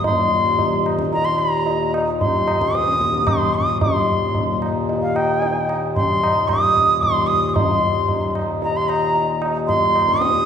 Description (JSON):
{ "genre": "indian classical, Hindustani", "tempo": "112 BPM", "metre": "7/4", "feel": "straight", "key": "unclear", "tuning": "A4 = 441 Hz", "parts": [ { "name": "bright reedy bansuri", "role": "melody", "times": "0.0-10.5 s", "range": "F5 to Eb6", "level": "-19 LUFS", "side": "right 1 dB", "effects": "none" }, { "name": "hand-pumped harmonium", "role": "drone", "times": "0.0-10.5 s", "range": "Eb2 to Bb2", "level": "-24 LUFS", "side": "left 2 dB", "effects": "none" }, { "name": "tabla", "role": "percussion", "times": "0.0-10.5 s", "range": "none", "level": "-21 LUFS", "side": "equal", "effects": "none" } ], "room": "wet recital hall reverb, RT60 1.7 s", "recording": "recorded in a church or concert hall, nothing above 10.4 kHz", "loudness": "-16 LUFS", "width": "side -8 dB against mid", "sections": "0.0-10.5 A section", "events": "none", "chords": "none", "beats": "| 0.04 0.58 1.13 1.67 2.21 2.74 3.28 | 3.82 4.35 4.89 5.42 5.96 6.49 7.02 | 7.55 8.09 8.62 9.14 9.67 10.20" }